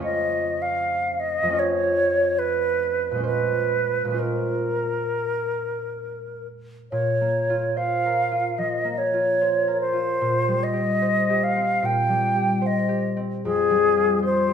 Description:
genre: classical, impressionist duo for flute and harp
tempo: 64-78 BPM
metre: 4/4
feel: rubato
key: Bb minor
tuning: A4 = 440 Hz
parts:
  - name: silver concert flute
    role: melody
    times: 0.0-14.5 s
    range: Ab4 to G5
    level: -22 LUFS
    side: equal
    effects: none
  - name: concert harp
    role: accompaniment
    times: 0.0-14.5 s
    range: F2 to C#5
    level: -27 LUFS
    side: right 1 dB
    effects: none
room: moderate recital hall reverb, RT60 1.8 s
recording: minimal, uncompressed stereo recording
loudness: -20 LUFS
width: side -8 dB against mid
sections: 0.0-6.9 A section; 6.9-14.5 B section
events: none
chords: 0.0 Faug; 3.3 Bbm9; 6.9 Bbmadd9; 10.2 Cm7/Bb; 13.5 Fmadd9

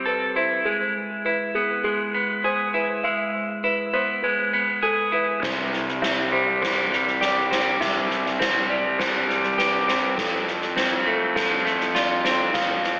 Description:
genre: post-rock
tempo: 101 BPM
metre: 4/4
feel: straight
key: unclear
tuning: A4 = 440 Hz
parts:
  - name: clean electric guitar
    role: arpeggios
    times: 0.0-13.0 s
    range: F2 to A4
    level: -25 LUFS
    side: equal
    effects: tape echo
  - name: felt-muted upright piano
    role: arpeggios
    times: 0.0-13.0 s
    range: G#4 to F5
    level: -31 LUFS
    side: equal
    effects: tape echo, slapback echo
  - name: fuzz fingered electric bass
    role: bass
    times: 5.4-13.0 s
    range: C2 to F2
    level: -30 LUFS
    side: equal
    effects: overdrive
  - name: soft-mallet drum kit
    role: drums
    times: 5.4-12.9 s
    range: kick drum, snare drum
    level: -28 LUFS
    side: equal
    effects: none
room: wet concert hall reverb, RT60 1.9 s, studio ambience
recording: big arena sound, AM radio sound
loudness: -23 LUFS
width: mono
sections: 0.0-13.0 A section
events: none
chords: 0.0 Am7; 0.7 E/G#; 5.4 C; 10.2 F

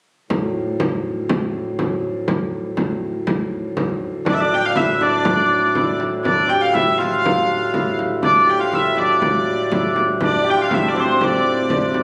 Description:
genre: medieval dance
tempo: 121 BPM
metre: 2/4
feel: straight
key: D minor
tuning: A4 = 440 Hz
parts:
  - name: pedal harmonium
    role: drone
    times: 0.3-12.0 s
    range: D2 to A2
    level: -27 LUFS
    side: equal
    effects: none
  - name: frame drum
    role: percussion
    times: 0.3-12.0 s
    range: none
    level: -26 LUFS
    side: equal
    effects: none
  - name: hammered dulcimer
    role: second line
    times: 4.2-12.0 s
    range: C4 to G4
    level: -23 LUFS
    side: equal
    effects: none
  - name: clear hurdy-gurdy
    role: melody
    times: 4.3-11.9 s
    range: C5 to G5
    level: -21 LUFS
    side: equal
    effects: none
room: wet recital hall reverb, RT60 1.4 s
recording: recorded on a phone in the room, club reverb, compression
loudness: -19 LUFS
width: mono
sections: 0.3-4.3 A section; 4.3-12.0 B section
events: none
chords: none

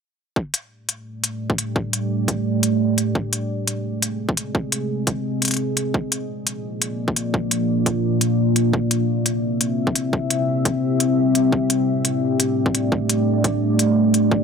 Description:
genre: half-time drum and bass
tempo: 172 BPM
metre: 4/4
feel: half-time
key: unclear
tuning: A4 = 440 Hz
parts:
  - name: deep dark ambient pad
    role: sustained chords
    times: 1.2-14.4 s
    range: A3 to E5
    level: -20 LUFS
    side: equal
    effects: chorus, built-in reverb, sidechain pumping
  - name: electronic kick drum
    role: drums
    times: 0.4-14.4 s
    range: none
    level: -22 LUFS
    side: equal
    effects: high-pass filter on kick
  - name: electronic hi-hat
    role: drums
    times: 0.5-14.2 s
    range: none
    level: -21 LUFS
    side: left 2 dB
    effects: none
room: moderate digital room reverb, RT60 1.2 s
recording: none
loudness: -19 LUFS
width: side -6 dB against mid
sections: 0.4-14.4 A section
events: filter sweep on ambient pad 0.4-14.4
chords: 0.4 Gsus2; 3.2 Ab; 5.9 Bb; 8.7 C; 11.5 Gsus2

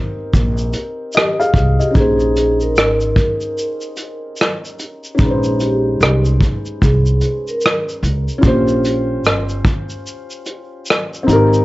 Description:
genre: lo-fi hip hop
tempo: 74 BPM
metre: 4/4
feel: swing 62% on 16ths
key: Bb dorian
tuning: A4 = 440 Hz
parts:
  - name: felt-muted upright piano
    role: accompaniment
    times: 0.0-11.6 s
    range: Ab3 to F5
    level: -20 LUFS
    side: left 1 dB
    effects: cassette tape
  - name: upright bass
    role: bass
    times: 0.3-11.6 s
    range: G1 to Db2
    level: -17 LUFS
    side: equal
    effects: none
  - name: vintage brush drum kit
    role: drums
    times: 0.3-11.6 s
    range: hi-hat, kick drum, rim click, shaker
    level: -17 LUFS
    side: equal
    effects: none
  - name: vibraphone with soft mallets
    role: melody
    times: 2.0-7.8 s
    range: G4 to Bb4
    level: -20 LUFS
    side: equal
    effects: tape echo
room: light reverb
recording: cassette tape, nothing above 7.8 kHz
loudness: -13 LUFS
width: side -19 dB against mid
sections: 0.0-11.6 A section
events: none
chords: 0.0 Abmaj9; 1.9 Bbm11; 8.4 Bbm69/G

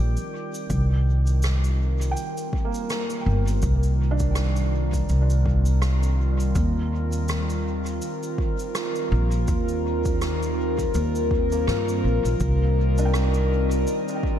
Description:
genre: ambient dub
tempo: 82 BPM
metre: 4/4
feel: swing 57% on 16ths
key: C minor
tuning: A4 = 440 Hz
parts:
  - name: warbly tape-like pad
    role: sustained chords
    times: 0.0-14.4 s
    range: Eb3 to Bb4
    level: -27 LUFS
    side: equal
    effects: chorus, built-in reverb, phaser
  - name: felt-muted upright piano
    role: arpeggios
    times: 0.0-6.7, 11.5-14.4 s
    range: Bb3 to G5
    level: -34 LUFS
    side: right 4 dB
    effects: tape echo
  - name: upright bass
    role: bass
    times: 0.0-13.8 s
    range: G1 to G2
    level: -22 LUFS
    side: equal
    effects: none
  - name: drifting glass-harmonics texture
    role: texture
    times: 0.0-0.7, 12.7-14.4 s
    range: G3 to G4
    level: -39 LUFS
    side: right 2 dB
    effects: chorus, built-in reverb
  - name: cabasa and rim click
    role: drums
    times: 0.2-14.2 s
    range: none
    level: -35 LUFS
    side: right 1 dB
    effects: studio reverb, dub echo
  - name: electronic kick drum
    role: drums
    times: 0.7-14.4 s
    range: none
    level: -27 LUFS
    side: equal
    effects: overdrive, studio reverb
room: light reverb, small room ambience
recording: dark, warm production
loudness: -21 LUFS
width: side -10 dB against mid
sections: 0.7-14.4 A section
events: none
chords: 0.0 Eb6; 0.7 Cm7; 6.6 Eb6; 12.4 Cm7

